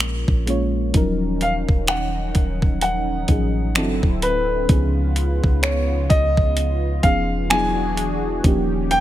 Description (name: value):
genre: contemporary R&B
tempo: 64 BPM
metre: 4/4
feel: swing 58% on 16ths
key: Eb minor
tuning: A4 = 440 Hz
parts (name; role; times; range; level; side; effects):
- dark grand piano; melody; 0.0-9.0 s; Cb5 to G#5; -23 LUFS; left 1 dB; ping-pong delay
- mellow FM electric piano; accompaniment; 0.0-9.0 s; E3 to Db5; -25 LUFS; left 1 dB; chorus
- warm 808-style bass; bass; 0.0-9.0 s; D1 to Db2; -23 LUFS; equal; none
- gated 80s digital drum machine; drums; 0.0-9.0 s; finger snaps, hi-hat, kick drum; -20 LUFS; equal; none
- warm analog pad; sustained chords; 0.9-9.0 s; Db3 to G#4; -29 LUFS; right 1 dB; chorus
room: little or no reverb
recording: none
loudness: -17 LUFS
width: side -13 dB against mid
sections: 0.9-9.0 A section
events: none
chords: 0.0 Bbm7; 0.9 Ebm9; 3.8 D9; 4.7 Db7; 7.5 E9; 8.4 Eb7